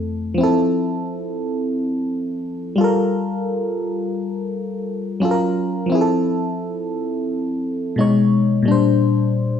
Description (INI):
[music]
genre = R&B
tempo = 87 BPM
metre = 4/4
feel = swing 53% on 16ths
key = F major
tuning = A4 = 440 Hz
[part]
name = FM electric piano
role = solo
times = 0.0-9.6 s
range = F2 to C#5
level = -18 LUFS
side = left 1 dB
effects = chorus
[sound]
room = wet studio reverb, RT60 0.6 s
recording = small room ambience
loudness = -18 LUFS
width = side -8 dB against mid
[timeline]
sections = 0.4-9.6 A section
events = none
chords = 0.4 Fmaj7; 2.8 Gm9; 5.2 Gbmaj7; 5.9 Fmaj7; 8.0 B69; 8.7 Bb69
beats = | 0.39 1.07 1.76 2.46 | 3.14 3.83 4.52 5.21 | 5.90 6.59 7.28 7.97 | 8.66 9.35